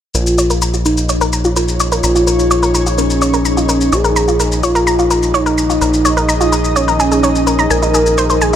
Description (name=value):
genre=melodic techno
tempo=127 BPM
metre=4/4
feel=straight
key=Bb minor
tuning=A4 = 440 Hz
part: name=wide unison lead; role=melody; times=0.1-8.6 s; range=Db4 to Bb4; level=-16 LUFS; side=equal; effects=dub echo
part: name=analog pluck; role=arpeggios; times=0.1-8.6 s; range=Eb4 to Bb5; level=-17 LUFS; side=equal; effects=chorus, vintage 12-bit sampler grit, dub echo
part: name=gritty driven synth bass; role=bass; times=0.1-8.6 s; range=Bb1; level=-17 LUFS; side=equal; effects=none
part: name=shaker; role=drums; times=0.1-8.6 s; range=none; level=-21 LUFS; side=left 4 dB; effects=none
part: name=granular cloud pad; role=texture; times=1.3-8.6 s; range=Eb4 to Eb5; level=-21 LUFS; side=equal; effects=built-in reverb
room=light reverb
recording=none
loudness=-11 LUFS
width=side -10 dB against mid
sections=0.1-8.6 A section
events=filter sweep on synth arpeggio sound 0.1-8.6; filter sweep on analog synth lead 0.1-8.6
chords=0.1 Bbm; 7.7 Abadd9/Bb